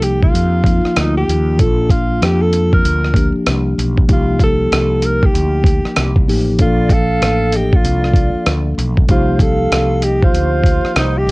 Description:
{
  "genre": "hip hop, jazz-hop",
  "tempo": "96 BPM",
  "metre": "4/4",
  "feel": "swing 62% on 16ths",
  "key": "Bb major",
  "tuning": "A4 = 440 Hz",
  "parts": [
    { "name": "breathy alto saxophone", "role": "melody", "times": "0.0-11.3 s", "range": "Eb4 to Bb4", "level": "-19 LUFS", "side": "equal", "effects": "cassette tape" },
    { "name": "mellow tine electric piano", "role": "accompaniment", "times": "0.0-11.3 s", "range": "F3 to A4", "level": "-19 LUFS", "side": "left 2 dB", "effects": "cassette tape" },
    { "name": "mellow fretless electric bass", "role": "bass", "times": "0.0-11.3 s", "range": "A1 to F2", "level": "-17 LUFS", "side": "equal", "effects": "none" },
    { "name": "dusty soul sampler-style drum kit", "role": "drums", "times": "0.0-11.3 s", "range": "hi-hat, kick drum, rim click", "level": "-14 LUFS", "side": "equal", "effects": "overdrive" },
    { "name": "mellow concert flute", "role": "second line", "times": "6.6-11.3 s", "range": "C5 to F5", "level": "-23 LUFS", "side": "right 3 dB", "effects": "cassette tape" }
  ],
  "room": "light reverb",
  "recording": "home recording on cassette",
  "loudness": "-12 LUFS",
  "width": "side -23 dB against mid",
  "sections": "0.0-11.3 A section",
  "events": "none",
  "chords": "0.0 F9sus4/C; 1.6 Bb; 4.1 F9sus4/C; 6.6 Bbmaj7; 9.1 F9sus4/C"
}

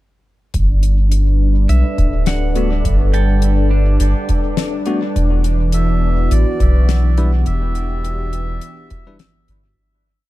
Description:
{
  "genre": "ambient dub",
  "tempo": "104 BPM",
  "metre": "4/4",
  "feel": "swing 55% on 16ths",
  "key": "E minor",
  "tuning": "A4 = 440 Hz",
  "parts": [
    { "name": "warm analog pad", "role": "sustained chords", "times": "0.5-9.8 s", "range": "E3 to B4", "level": "-23 LUFS", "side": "right 1 dB", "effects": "chorus" },
    { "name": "soft dub sub bass", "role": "bass", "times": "0.5-9.7 s", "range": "D1 to B1", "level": "-14 LUFS", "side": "equal", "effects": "none" },
    { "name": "electronic kick drum", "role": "drums", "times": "0.5-9.0 s", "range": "none", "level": "-19 LUFS", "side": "equal", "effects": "studio reverb" },
    { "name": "tight funk drum kit", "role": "drums", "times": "0.5-9.6 s", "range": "hi-hat, snare drum", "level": "-25 LUFS", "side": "left 8 dB", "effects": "studio reverb, dub echo" },
    { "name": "bubbling stepped-filter texture", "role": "texture", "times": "0.5-9.8 s", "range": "D4 to D5", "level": "-28 LUFS", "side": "left 2 dB", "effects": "chorus, built-in reverb" },
    { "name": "pedal steel guitar", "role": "arpeggios", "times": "1.7-6.1 s", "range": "D4 to A5", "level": "-29 LUFS", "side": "right 4 dB", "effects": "dub echo" },
    { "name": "bell-like tine electric piano", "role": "stabs", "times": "2.6-9.2 s", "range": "G3 to B4", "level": "-26 LUFS", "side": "left 4 dB", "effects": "low-pass filter, dub echo" },
    { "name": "melodica", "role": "melody", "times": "5.7-9.2 s", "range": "D5 to E5", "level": "-29 LUFS", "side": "equal", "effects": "dub echo" }
  ],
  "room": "small room ambience",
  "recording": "dark, warm production",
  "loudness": "-13 LUFS",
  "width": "side -16 dB against mid",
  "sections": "0.5-9.8 groove",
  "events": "fade-out 6.7-9.8",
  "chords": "0.5 Gmaj7; 5.2 Em7"
}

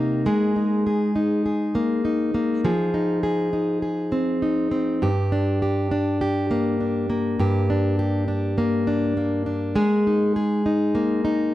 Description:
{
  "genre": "pop",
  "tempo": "101 BPM",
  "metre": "4/4",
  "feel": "swing 55% on 16ths",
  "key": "unclear",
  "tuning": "A4 = 440 Hz",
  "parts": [
    { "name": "fingerpicked plugged-in steel-string acoustic guitar", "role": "solo", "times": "0.0-11.5 s", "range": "G2 to Ab4", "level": "-20 LUFS", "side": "equal", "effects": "none" }
  ],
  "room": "moderate studio reverb, RT60 0.6 s",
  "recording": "dry, close 1970s-style studio recording",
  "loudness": "-20 LUFS",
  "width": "side -15 dB against mid",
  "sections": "0.0-7.4 A section; 7.4-11.5 B section",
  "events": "none",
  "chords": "0.3 Absus2; 2.7 Fm7; 5.0 Gm; 9.8 Absus2"
}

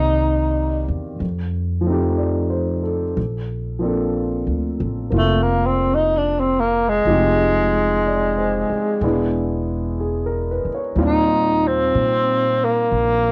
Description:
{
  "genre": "jazz ballad",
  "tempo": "62 BPM",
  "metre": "4/4",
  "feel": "swing 68% on 8ths",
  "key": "Bb major",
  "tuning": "A4 = 440 Hz",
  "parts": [
    { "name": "breathy tenor saxophone", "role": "melody", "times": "0.0-13.3 s", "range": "Ab3 to Eb4", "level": "-20 LUFS", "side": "equal", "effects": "cassette tape" },
    { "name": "warm grand piano", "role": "accompaniment", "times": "0.0-13.3 s", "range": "Bb2 to D5", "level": "-25 LUFS", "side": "equal", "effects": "none" },
    { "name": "upright bass", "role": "bass", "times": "0.0-13.3 s", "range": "E1 to Bb2", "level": "-26 LUFS", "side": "equal", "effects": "none" }
  ],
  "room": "moderate studio reverb, RT60 0.6 s",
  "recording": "home recording on cassette",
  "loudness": "-20 LUFS",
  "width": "mono",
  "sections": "0.0-3.2 A section; 3.2-13.3 B section",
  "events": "tenor saxophone solo 3.2-13.3",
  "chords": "0.0 Cm7; 1.2 F9; 3.2 Bbmaj7; 7.1 Fm9; 9.0 E7; 11.0 Eb69"
}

